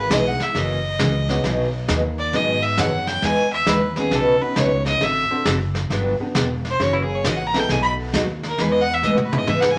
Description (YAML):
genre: country, western swing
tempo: 134 BPM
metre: 4/4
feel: swing 66% on 8ths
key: E major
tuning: A4 = 440 Hz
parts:
  - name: clear fiddle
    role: melody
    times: 0.0-9.8 s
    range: E4 to B5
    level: -24 LUFS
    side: equal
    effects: none
  - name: upright bass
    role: bass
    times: 0.0-9.8 s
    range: E1 to A2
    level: -28 LUFS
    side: equal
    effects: none
  - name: clear upright piano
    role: accompaniment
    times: 0.1-9.5 s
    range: G#3 to C#5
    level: -30 LUFS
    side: equal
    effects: none
  - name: picked steel-string acoustic guitar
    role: accompaniment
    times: 0.1-9.7 s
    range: B2 to B4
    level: -26 LUFS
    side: equal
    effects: none
  - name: vintage brush drum kit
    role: drums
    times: 0.1-9.8 s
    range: brushed snare drum, hi-hat, snare drum, toms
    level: -28 LUFS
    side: equal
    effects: none
room: wet club reverb, RT60 0.8 s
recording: none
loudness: -20 LUFS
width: mono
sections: 0.0-9.8 A section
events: fiddle solo 0.0-9.8; drum fill 9.0-9.8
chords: 0.0 Emaj7; 0.6 F#7; 1.4 B6; 3.2 Emaj7; 4.1 Badd9; 5.0 D7/A; 5.9 Gmaj7; 6.8 F#7; 7.7 B7; 8.6 Emaj7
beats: 0.11 0.55 1.00 | 1.44 1.89 2.33 2.78 | 3.23 3.67 4.12 4.56 | 5.01 5.46 5.90 6.35 | 6.80 7.24 7.69 8.13 | 8.58 9.03 9.47